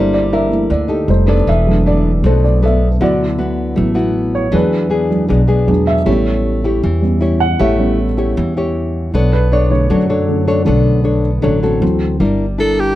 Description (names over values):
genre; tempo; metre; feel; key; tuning
bossa nova; 157 BPM; 4/4; straight; D major; A4 = 440 Hz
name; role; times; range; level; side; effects
dark baby grand piano; accompaniment; 0.0-12.2 s; D3 to F#5; -17 LUFS; right 1 dB; none
nylon-string guitar; accompaniment; 0.0-13.0 s; B2 to C#5; -17 LUFS; left 2 dB; none
upright bass; bass; 0.0-12.9 s; E1 to F#2; -16 LUFS; equal; none
breathy alto saxophone; melody; 12.6-13.0 s; G4 to A4; -14 LUFS; right 1 dB; none
room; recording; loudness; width
little or no reverb; dark, warm production; -12 LUFS; side -14 dB against mid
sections
0.0-12.2 A section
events
grand piano solo 0.0-12.2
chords
0.0 Gm6; 1.1 F9; 1.5 E7sus4; 3.0 D69; 4.5 E7; 6.1 A7; 9.1 Bm9; 11.8 D7; 12.2 Gm6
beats
0.32 0.71 1.09 | 1.47 1.86 2.24 2.62 | 3.01 3.39 3.77 4.16 | 4.54 4.92 5.31 5.69 | 6.07 6.46 6.84 7.22 | 7.61 7.99 8.37 8.76 | 9.14 9.52 9.90 10.29 | 10.67 11.05 11.44 11.82 | 12.20 12.59